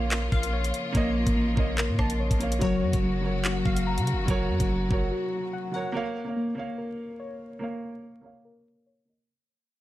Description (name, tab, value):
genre	hip hop, drill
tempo	144 BPM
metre	4/4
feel	half-time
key	Bb minor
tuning	A4 = 440 Hz
part	glassy wavetable pluck	second line	0.0-5.9 s	Db5 to A5	-38 LUFS	left 3 dB	chorus, ping-pong delay
part	dark concert grand piano	accompaniment	0.0-9.3 s	Gb3 to F5	-32 LUFS	right 3 dB	low-pass filter
part	warm symphonic string section	sustained chords	0.0-5.9 s	Db3 to Gb4	-34 LUFS	left 2 dB	none
part	muted felt-like synth keys	arpeggios	0.0-9.3 s	Gb3 to Bb5	-31 LUFS	left 2 dB	chorus, low-pass filter, ping-pong delay
part	long sustained 808-style bass	bass	0.0-5.1 s	Gb1 to Db3	-29 LUFS	equal	none
part	drill drum kit	drums	0.1-5.0 s	handclaps, hi-hat, kick drum, rim click	-27 LUFS	equal	overdrive
room	digital ambience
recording	vinyl crackle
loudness	-24 LUFS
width	side -15 dB against mid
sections	0.0-5.9 A section; 5.9-9.3 B section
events	break 5.1-5.9; fade-out 5.9-9.3; filter sweep 5.9-9.3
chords	0.0 Bbm; 2.6 Gb; 5.9 Bbm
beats	0.12 0.53 | 0.95 1.36 1.78 2.20 | 2.62 3.03 3.45 3.87 | 4.28 4.70 5.12 5.53 | 5.95 6.37 6.78 7.20 | 7.62 8.03 8.45 8.87